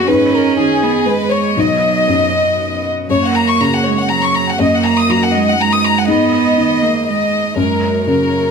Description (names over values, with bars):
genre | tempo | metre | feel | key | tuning
neoclassical piano and strings | 120 BPM | 3/4 | rubato | unclear | A4 = 440 Hz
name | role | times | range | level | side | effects
warm chamber violin section | melody | 0.0-8.5 s | G#4 to D#6 | -15 LUFS | left 2 dB | none
warm cello | second line | 0.0-8.5 s | F#3 to C#4 | -17 LUFS | right 8 dB | none
felt-muted upright piano | accompaniment | 0.0-8.5 s | B1 to F#3 | -19 LUFS | left 4 dB | none
warm chamber string section | sustained chords | 0.0-8.5 s | G#3 to D#5 | -27 LUFS | right 2 dB | none
room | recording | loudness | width
light reverb | close, detailed microphones | -12 LUFS | side -6 dB against mid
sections
0.0-8.5 A section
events
none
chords
0.1 G#m; 1.6 B; 3.1 F#; 4.6 D#m/F#; 6.1 G#m; 7.6 F#